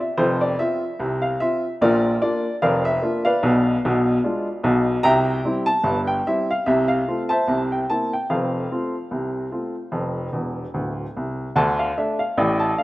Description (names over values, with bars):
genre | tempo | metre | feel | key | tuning
ragtime piano | 74 BPM | 2/4 | swing 55% on 16ths | F major | A4 = 437 Hz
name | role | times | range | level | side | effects
warm upright piano | solo | 0.0-12.8 s | D1 to Bb5 | -19 LUFS | equal | none
room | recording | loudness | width
moderate plate reverb, RT60 2.7 s | rough home demo mix | -19 LUFS | side -18 dB against mid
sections
0.0-11.6 A section; 11.6-12.8 B section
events
upright piano fill 10.3-11.6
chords
0.0 F5; 1.8 Bb; 3.4 Bdim7; 5.0 C; 6.7 F/C; 7.5 C7; 8.3 F; 11.6 Dm